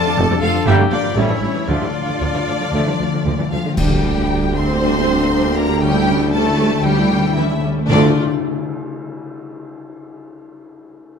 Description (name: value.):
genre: classical, dramatic, fast romantic movement for symphony orchestra.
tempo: 117 BPM.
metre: 4/4.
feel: rubato.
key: D minor.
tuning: A4 = 440 Hz.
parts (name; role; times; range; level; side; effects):
warm symphonic violin section; melody; 0.0-8.2 s; C#5 to C6; -24 LUFS; left 3 dB; none.
bright large flute ensemble; second line; 0.0-3.5 s; E4 to D5; -26 LUFS; equal; none.
warm oboe; second line; 0.0-3.5 s; E4 to A4; -28 LUFS; equal; none.
warm symphonic violin section; second line; 0.0-8.2 s; C#4 to C5; -25 LUFS; left 2 dB; none.
concert harp; arpeggios; 0.0-10.0 s; F2 to Bb5; -24 LUFS; left 11 dB; none.
rich symphonic cello section; bass; 0.0-8.2 s; F2 to C4; -24 LUFS; right 3 dB; none.
rich symphonic viola section; accompaniment; 0.1-8.2 s; C3 to G4; -24 LUFS; right 1 dB; none.
clear tuba; bass; 0.2-8.1 s; F1 to D2; -23 LUFS; right 4 dB; none.
rich studio double bass section; bass; 0.2-8.2 s; F1 to D2; -23 LUFS; right 4 dB; none.
brilliant trombone section; sustained chords; 0.7-2.9 s; D3 to G3; -27 LUFS; right 3 dB; none.
warm French horn section; sustained chords; 0.7-2.9 s; A3 to A4; -27 LUFS; left 5 dB; none.
timpani; percussion; 1.7-8.1 s; D3; -24 LUFS; left 1 dB; none.
clash cymbals, concert bass drum and tam-tam; percussion; 3.8-4.8, 7.9-9.9 s; none; -26 LUFS; equal; none.
room: moderate scoring stage reverb, RT60 1.7 s.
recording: none.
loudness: -14 LUFS.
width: side -6 dB against mid.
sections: 0.0-3.8 A section; 3.8-7.9 B section; 7.9-10.0 C section.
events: timpani fill 1.7-3.8, 5.8-7.9; band accent 3.8-4.3, 7.9-8.4.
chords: 0.0 Dm/F; 0.7 Gm; 1.2 A7; 1.7 Dm; 3.8 Gm/D; 5.8 A7/D; 7.9 Dm.